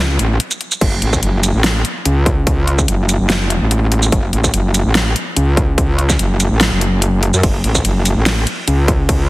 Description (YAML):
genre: heavy wobble dubstep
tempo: 145 BPM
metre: 4/4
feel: half-time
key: F# minor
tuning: A4 = 440 Hz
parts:
  - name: metallic wobble bass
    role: bass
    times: 0.0-9.3 s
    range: F#1 to F#2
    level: -14 LUFS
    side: equal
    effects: distortion, chorus, overdrive
  - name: dubstep drum kit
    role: drums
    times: 0.2-9.2 s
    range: crash cymbal, hi-hat, ride cymbal, shaker, snare drum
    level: -18 LUFS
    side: equal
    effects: overdrive
  - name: electronic kick drum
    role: drums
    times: 0.8-9.2 s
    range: none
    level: -16 LUFS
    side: equal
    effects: distortion
room: little or no reverb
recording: heavily compressed radio sound, multiband compression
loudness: -12 LUFS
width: side -19 dB against mid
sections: 0.0-9.3 A section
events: break 0.4-0.8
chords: none